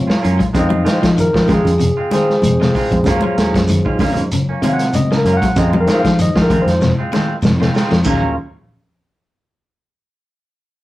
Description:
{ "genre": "afrobeat", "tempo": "96 BPM", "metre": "4/4", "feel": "swing 54% on 16ths", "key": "Eb dorian", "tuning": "A4 = 437 Hz", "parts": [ { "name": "tine electric piano", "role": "accompaniment", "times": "0.0-8.4 s", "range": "Bb2 to Gb5", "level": "-18 LUFS", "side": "left 1 dB", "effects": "none" }, { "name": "electric guitar at the edge of break-up", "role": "arpeggios", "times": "0.0-8.2 s", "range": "C3 to Gb3", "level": "-21 LUFS", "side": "left 2 dB", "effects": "warbly pitch drift" }, { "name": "fingered electric bass", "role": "bass", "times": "0.0-8.4 s", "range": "Eb2 to F3", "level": "-17 LUFS", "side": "equal", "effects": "none" }, { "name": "clean electric guitar", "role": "stabs", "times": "0.1-8.3 s", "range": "Eb3 to F4", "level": "-22 LUFS", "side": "right 2 dB", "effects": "none" }, { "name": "vintage drum kit", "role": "drums", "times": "0.1-8.2 s", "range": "crash cymbal, hi-hat, kick drum, snare drum", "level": "-19 LUFS", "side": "equal", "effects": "none" }, { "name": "shekere", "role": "percussion", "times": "0.2-8.2 s", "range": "none", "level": "-27 LUFS", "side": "right 1 dB", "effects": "none" }, { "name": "congas", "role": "percussion", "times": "0.4-8.2 s", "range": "none", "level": "-23 LUFS", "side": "equal", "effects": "none" } ], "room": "moderate studio reverb, RT60 0.5 s", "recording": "rough rehearsal-room recording, tube saturation", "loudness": "-12 LUFS", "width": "side -16 dB against mid", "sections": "0.0-8.1 A section; 8.1-10.6 B section", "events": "tine electric piano solo 0.0-8.1; drum fill 6.8-8.1", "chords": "0.0 Ebm9 (rootless); 0.5 Fm7; 3.1 Ebm9; 5.6 Fm7; 8.1 Ebm9" }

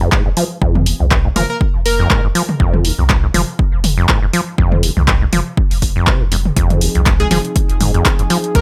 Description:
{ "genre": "acid house", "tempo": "121 BPM", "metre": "4/4", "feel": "swing 56% on 16ths", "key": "F minor", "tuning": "A4 = 440 Hz", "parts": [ { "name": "acid bass, saw", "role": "riff", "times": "0.0-8.6 s", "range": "Eb2 to F3", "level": "-20 LUFS", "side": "equal", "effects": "overdrive, sidechain pumping, dub echo" }, { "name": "warm sub bass", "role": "bass", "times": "0.0-8.6 s", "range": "F1 to C2", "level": "-20 LUFS", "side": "equal", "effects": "tube saturation, sidechain pumping" }, { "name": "electronic kick drum", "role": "drums", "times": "0.1-8.6 s", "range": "none", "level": "-18 LUFS", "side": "equal", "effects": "overdrive" }, { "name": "punchy analog drum machine", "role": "drums", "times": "0.1-8.6 s", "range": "handclaps, hi-hat, toms", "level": "-21 LUFS", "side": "equal", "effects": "overdrive" }, { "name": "plucky unison lead", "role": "melody", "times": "1.4-2.2, 7.2-8.6 s", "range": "Ab4 to Bb4", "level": "-24 LUFS", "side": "equal", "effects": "dub echo" }, { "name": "warm analog pad", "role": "sustained chords", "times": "6.6-8.6 s", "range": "F3 to Ab4", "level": "-25 LUFS", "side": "equal", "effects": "chorus, sidechain pumping" } ], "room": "light reverb", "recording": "none", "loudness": "-15 LUFS", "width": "mono", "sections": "0.0-8.6 A section", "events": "filter sweep on acid bass 0.0-8.6; drum fill 6.3", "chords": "0.0 Fm7" }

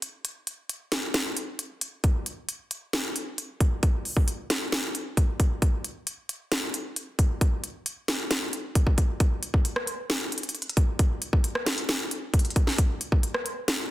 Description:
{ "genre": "hip hop", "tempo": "134 BPM", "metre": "4/4", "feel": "half-time", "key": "none", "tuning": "none", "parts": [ { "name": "trap drum kit", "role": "drums", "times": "0.0-13.8 s", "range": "hi-hat, kick drum, rim click, snare drum", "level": "-24 LUFS", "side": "equal", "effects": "none" } ], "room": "light reverb", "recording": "dense, heavily limited modern master", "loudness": "-25 LUFS", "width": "side -16 dB against mid", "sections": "0.0-9.2 A section; 9.2-13.9 B section", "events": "break 0.0-2.0", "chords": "none" }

